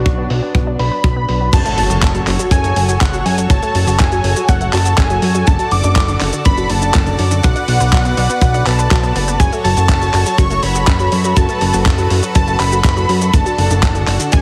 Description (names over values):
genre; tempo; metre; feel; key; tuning
italo disco; 122 BPM; 4/4; straight; F# minor; A4 = 440 Hz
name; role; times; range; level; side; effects
unison lead; melody; 0.0-14.4 s; F#4 to D6; -22 LUFS; equal; digital delay
lush unison pad; sustained chords; 0.0-14.4 s; F#3 to D5; -25 LUFS; equal; chorus
analog pluck; arpeggios; 0.0-14.4 s; A2 to B4; -26 LUFS; equal; chorus, digital delay
fat analog bass; bass; 0.0-14.4 s; F#1 to F#2; -19 LUFS; equal; none
kick drum; drums; 0.1-14.4 s; none; -17 LUFS; equal; small room ambience
dusty soul sampler-style drum kit; drums; 0.3-14.4 s; cabasa, crash cymbal, handclaps, hi-hat; -24 LUFS; equal; low-pass filter on hats, small room ambience, low-pass filter on cymbals, low-pass filter on perc, low-pass filter on snare
impact; sound effects; 1.5-3.5 s; none; -27 LUFS; equal; none
room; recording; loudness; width
light reverb; heavily compressed radio sound; -14 LUFS; mono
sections
0.0-1.5 A section; 1.5-14.4 B section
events
filter sweep on analog synth pad 0.0-1.5; impact 1.5-3.5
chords
0.0 Bm; 1.5 F#madd9; 5.5 D/F#; 7.4 Bm; 9.4 F#m; 13.3 D/F#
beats
0.06 0.55 1.04 | 1.53 2.02 2.52 3.01 | 3.50 3.99 4.48 4.98 | 5.47 5.96 6.45 6.94 | 7.43 7.93 8.42 8.91 | 9.40 9.89 10.39 10.88 | 11.37 11.86 12.35 12.85 | 13.34 13.83 14.32